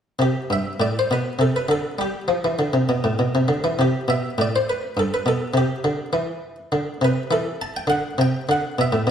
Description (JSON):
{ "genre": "classical, baroque-style suite movement for harpsichord", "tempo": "101 BPM", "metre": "3/4", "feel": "rubato", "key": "C major", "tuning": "A4 = 440 Hz", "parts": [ { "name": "buff-stop harpsichord", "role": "solo", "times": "0.2-9.1 s", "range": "G2 to A5", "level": "-19 LUFS", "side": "equal", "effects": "none" } ], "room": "wet stone room reverb, RT60 1.3 s", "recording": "heard from further back in the room", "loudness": "-19 LUFS", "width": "side -8 dB against mid", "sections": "0.2-9.1 A section", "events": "none", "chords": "0.2 C5; 1.4 D5/C; 2.0 G; 3.8 Am9; 5.0 G; 5.6 C69; 8.5 D" }